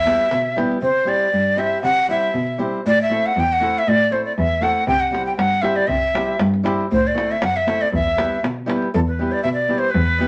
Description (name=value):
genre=balkan folk, Balkan wedding band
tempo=118 BPM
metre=2/4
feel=swing 54% on 16ths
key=unclear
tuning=A4 = 440 Hz
part: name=breathy bright ney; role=melody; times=0.0-10.3 s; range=A4 to G5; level=-21 LUFS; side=equal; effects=none
part: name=nylon-string guitar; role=accompaniment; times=0.0-10.3 s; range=G3 to A4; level=-26 LUFS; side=equal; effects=none
part: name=dark cello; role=bass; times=0.0-10.2 s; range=E2 to C3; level=-25 LUFS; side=equal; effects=none
part: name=davul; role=percussion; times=0.1-0.8, 4.9-8.9 s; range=none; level=-30 LUFS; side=equal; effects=none
room=moderate studio reverb, RT60 0.6 s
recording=none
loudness=-19 LUFS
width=mono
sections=0.8-8.9 A section; 8.9-10.3 B section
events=none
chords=0.0 Em; 0.8 C; 2.9 Am; 4.9 C; 6.9 Am; 7.9 Em